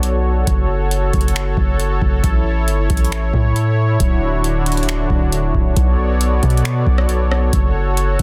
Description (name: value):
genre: hip hop, atmospheric cloud-rap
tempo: 136 BPM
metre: 4/4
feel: half-time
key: B minor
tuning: A4 = 440 Hz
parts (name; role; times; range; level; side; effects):
- warm analog pad; sustained chords; 0.0-8.2 s; D3 to D5; -23 LUFS; equal; chorus, tremolo, sidechain pumping
- long sustained 808-style bass; bass; 0.0-8.2 s; D1 to B2; -20 LUFS; equal; none
- booming analog drum machine; drums; 0.0-8.2 s; finger snaps, hi-hat, kick drum, rim click; -20 LUFS; equal; soft clipping on snare
room: digital ambience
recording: dense, heavily limited modern master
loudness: -17 LUFS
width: mono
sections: 0.0-5.8 A section; 5.8-8.2 B section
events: none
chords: 0.5 F#m; 2.2 A; 4.0 Dmaj7; 5.8 Bm7; 7.5 F#m